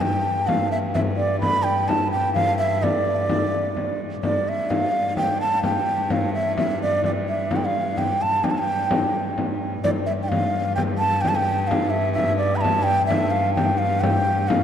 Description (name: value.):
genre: medieval dance.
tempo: 128 BPM.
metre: 3/4.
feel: straight.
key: unclear.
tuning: A4 = 440 Hz.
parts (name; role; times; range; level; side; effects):
breathy bansuri; melody; 0.0-14.6 s; D5 to B5; -22 LUFS; right 1 dB; tape echo.
rich viola da gamba; drone; 0.0-14.6 s; G2; -27 LUFS; left 1 dB; none.
frame drum; percussion; 0.0-14.6 s; none; -25 LUFS; left 2 dB; none.
room: wet church reverb, RT60 3.5 s.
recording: dark, warm production.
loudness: -19 LUFS.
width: side -9 dB against mid.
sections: 0.0-9.8 A section; 9.8-14.6 A section.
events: none.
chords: none.